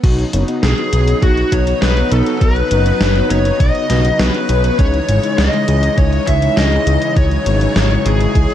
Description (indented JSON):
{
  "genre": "synthwave",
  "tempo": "101 BPM",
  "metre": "4/4",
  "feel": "straight",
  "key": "unclear",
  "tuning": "A4 = 440 Hz",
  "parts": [
    { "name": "soft supersaw", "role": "sustained chords", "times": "0.0-8.5 s", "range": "C#3 to D#4", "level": "-22 LUFS", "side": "equal", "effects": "sidechain pumping" },
    { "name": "mellow synth brass", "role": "stabs", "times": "0.0-8.5 s", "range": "G#3 to D#5", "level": "-22 LUFS", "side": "left 2 dB", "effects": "chorus, cassette tape" },
    { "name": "fat analog bass", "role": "bass", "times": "0.0-8.5 s", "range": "F#1 to C#2", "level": "-15 LUFS", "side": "equal", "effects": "tube saturation" },
    { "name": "electronic kick drum", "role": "drums", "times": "0.0-8.5 s", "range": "none", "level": "-15 LUFS", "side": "equal", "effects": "studio reverb" },
    { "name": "gated 80s digital drum machine", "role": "drums", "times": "0.0-8.5 s", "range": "crash cymbal, hi-hat, snare drum", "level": "-20 LUFS", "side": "equal", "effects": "gated reverb, gated reverb snare, studio reverb" },
    { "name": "smooth overdriven lead guitar", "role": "melody", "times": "0.6-8.5 s", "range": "F#4 to E5", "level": "-19 LUFS", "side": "left 3 dB", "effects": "digital delay" },
    { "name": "string machine, violins", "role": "second line", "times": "0.6-8.5 s", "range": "F#4 to E5", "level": "-26 LUFS", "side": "left 1 dB", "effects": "ensemble chorus" }
  ],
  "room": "light reverb, digital ambience",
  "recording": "dark, warm production",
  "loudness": "-12 LUFS",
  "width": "side -11 dB against mid",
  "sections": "0.0-8.5 A section",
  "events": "none",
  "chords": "0.0 Badd9; 4.8 C#madd9"
}